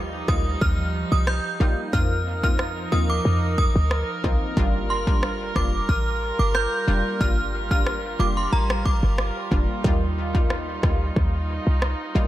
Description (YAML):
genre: dancehall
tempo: 91 BPM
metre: 4/4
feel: straight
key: G minor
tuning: A4 = 440 Hz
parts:
  - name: warm studio string section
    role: sustained chords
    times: 0.0-12.3 s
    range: F3 to Bb4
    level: -30 LUFS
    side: right 2 dB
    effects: sidechain pumping
  - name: short 808-style bass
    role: bass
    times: 0.0-12.3 s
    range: F1 to F2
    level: -24 LUFS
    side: equal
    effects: none
  - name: synth chime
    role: melody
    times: 0.3-9.0 s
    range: Bb5 to G6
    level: -28 LUFS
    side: right 1 dB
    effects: ensemble chorus, dub echo
  - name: analog pluck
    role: accompaniment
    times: 0.3-12.3 s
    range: G3 to F4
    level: -31 LUFS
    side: left 1 dB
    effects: chorus, dub echo
  - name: afro-pop drum kit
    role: drums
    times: 0.3-12.0 s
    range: kick drum, rim click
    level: -24 LUFS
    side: equal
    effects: none
room: light reverb, digital ambience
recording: echo-heavy mix, lossy compression artefacts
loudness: -20 LUFS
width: side -14 dB against mid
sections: 0.0-12.3 A section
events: none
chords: 0.0 Ebadd9; 1.9 F7sus4; 4.6 Gm7; 9.8 Ebadd9